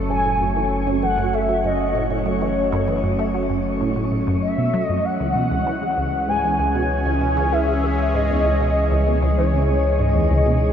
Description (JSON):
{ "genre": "ambient, sequencer-driven space music", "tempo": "97 BPM", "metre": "4/4", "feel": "straight", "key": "C# minor", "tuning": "A4 = 440 Hz", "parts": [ { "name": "sweeping resonant pad", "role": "sustained chords", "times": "0.0-10.7 s", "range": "E3 to A4", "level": "-24 LUFS", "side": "right 1 dB", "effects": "chorus, shimmer reverb" }, { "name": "round analog bass", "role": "bass", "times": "0.0-10.7 s", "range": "F#1 to C#2", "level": "-23 LUFS", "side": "equal", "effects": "tube saturation" }, { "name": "wind-like tuned noise texture", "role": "texture", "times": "0.0-10.7 s", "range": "C#4 to C#5", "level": "-32 LUFS", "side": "equal", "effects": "built-in reverb, shimmer reverb" }, { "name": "expressive portamento lead", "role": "melody", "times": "0.1-10.7 s", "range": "C#5 to G#5", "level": "-22 LUFS", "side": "left 1 dB", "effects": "ensemble chorus, cassette tape, shimmer reverb, ping-pong delay" }, { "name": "resonant blip pluck", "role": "riff", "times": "0.1-10.6 s", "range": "C#2 to A3", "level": "-24 LUFS", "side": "right 1 dB", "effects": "phaser, ping-pong delay" } ], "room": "moderate huge ambient reverb, RT60 8.2 s", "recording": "nothing above 8.0 kHz", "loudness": "-18 LUFS", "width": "side -8 dB against mid", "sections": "0.0-10.7 A section", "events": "none", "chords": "0.0 F#m; 5.0 C#m" }